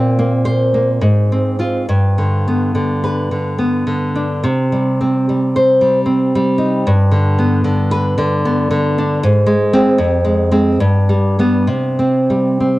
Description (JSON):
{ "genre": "romantic piece for solo classical guitar", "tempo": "66-79 BPM", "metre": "3/4", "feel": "rubato", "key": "unclear", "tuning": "A4 = 440 Hz", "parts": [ { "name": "nylon-string guitar", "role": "solo", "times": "0.0-12.8 s", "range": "F2 to C5", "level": "-12 LUFS", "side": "equal", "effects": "cassette tape, tape echo" } ], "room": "moderate studio reverb, RT60 0.5 s", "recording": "home recording on cassette", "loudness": "-12 LUFS", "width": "side -18 dB against mid", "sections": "0.0-12.8 A section", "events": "none", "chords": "0.0 Bbsus2; 1.0 Fm/Ab; 1.9 G; 4.5 C5; 6.9 G; 9.2 Ab; 10.0 Fm; 10.8 G; 11.7 C5" }